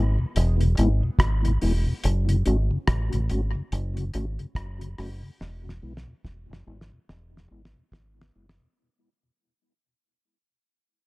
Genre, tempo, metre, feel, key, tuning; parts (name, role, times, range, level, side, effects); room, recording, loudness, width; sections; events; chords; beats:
dub reggae; 71 BPM; 4/4; swing 59% on 16ths; A4 = 439 Hz
mellow tonewheel organ; accompaniment; 0.0-8.7 s; E2 to F#4; -28 LUFS; left 2 dB; chorus vibrato, stopped rotary speaker, tape echo
deep dub fingered electric bass; bass; 0.0-8.6 s; E1 to B1; -24 LUFS; equal
cloth-damped thuddy drum kit; drums; 0.4-8.7 s; hi-hat, kick drum, rim click, snare drum; -27 LUFS; equal
little or no reverb; dark, warm production; -22 LUFS; side -22 dB against mid
0.0-8.8 A section
fade-out 0.0-8.8; drum fill 5.4-8.8
0.0 E; 2.0 F#m; 5.4 E
0.35 1.20 | 2.04 2.88 3.72 4.56 | 5.40 6.24 7.08 7.93